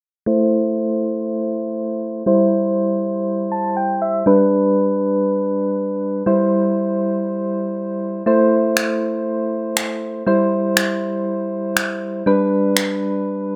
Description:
dance-pop; 120 BPM; 4/4; straight; A minor; A4 = 442 Hz
soft electric-piano-like synth keys; accompaniment; 0.3-13.6 s; G3 to A5; -19 LUFS; equal; chorus, tremolo, low-pass filter
electronic finger snaps; drums; 8.8-12.9 s; -21 LUFS; equal
moderate digital room reverb, RT60 1.1 s; -19 LUFS; mono
0.3-13.6 A section
filter sweep on synth keys 0.3-13.6; synth keys fill 3.3-4.3
0.3 Am; 2.3 C; 4.3 G; 6.3 C; 8.3 Am; 10.3 C; 12.3 G

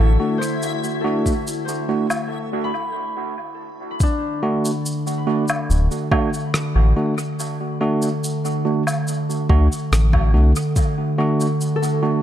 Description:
ambient dub; 71 BPM; 4/4; straight; D mixolydian; A4 = 444 Hz
warbly tape-like pad; sustained chords; 0.0-12.2 s; D3 to F#4; -25 LUFS; equal; chorus, built-in reverb
concert harp; arpeggios; 0.0-12.2 s; D4 to B5; -29 LUFS; left 3 dB; tape echo
round analog bass; bass; 0.0-0.2, 5.7-10.5 s; D1 to D2; -14 LUFS; equal
backwards swelling texture; texture; 0.0-2.4 s; A3 to E4; -31 LUFS; left 3 dB; built-in reverb
bright tine electric piano; stabs; 0.2-12.2 s; A3 to F#4; -23 LUFS; right 2 dB; auto-pan, dub echo
cabasa, woodblock and rim click; drums; 0.4-12.0 s; -28 LUFS; left 1 dB; dub echo
electronic kick drum; drums; 1.3-10.9 s; -20 LUFS; equal; overdrive
light reverb, small room ambience; -18 LUFS; side -11 dB against mid
0.0-4.0 A section; 4.0-12.2 B section
break 2.3-4.0
0.0 D

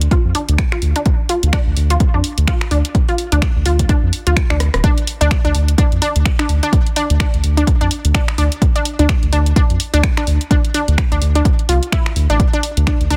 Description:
minimal techno; 127 BPM; 4/4; swing 58% on 16ths; D minor; A4 = 443 Hz
round analog bass; bass; 0.0-13.2 s; D1 to F2; -17 LUFS; equal; sidechain pumping
punchy analog drum machine; drums; 0.0-13.2 s; finger snaps, hi-hat, rim click; -25 LUFS; equal; soft clipping on snare
resonant blip pluck; riff; 0.1-13.1 s; D4 to F4; -23 LUFS; equal; chorus, sidechain pumping, digital delay
electronic kick drum; drums; 0.1-13.0 s; -18 LUFS; equal
little or no reverb; dense, heavily limited modern master; -15 LUFS; mono
0.0-4.8 A section; 4.8-13.2 B section
filter sweep on synth pluck 0.0-4.8; drum fill 4.6; drop 4.8-13.2
0.0 Dm; 4.8 N.C.

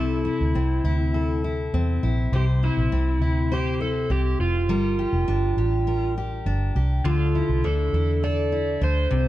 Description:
acoustic pop; 102 BPM; 4/4; straight; D minor; A4 = 435 Hz
overdriven slide guitar; melody; 0.0-9.3 s; E4 to D5; -27 LUFS; right 2 dB
fingerpicked steel-string acoustic guitar; accompaniment; 0.0-9.3 s; C3 to C5; -26 LUFS; left 3 dB
vintage muted fingered electric bass; bass; 0.0-9.3 s; F1 to E2; -23 LUFS; equal
little or no reverb; dark, warm production; -21 LUFS; side -14 dB against mid
0.0-9.3 A section
0.0 Am/C; 2.3 C; 4.7 Gm; 7.0 Dmadd9

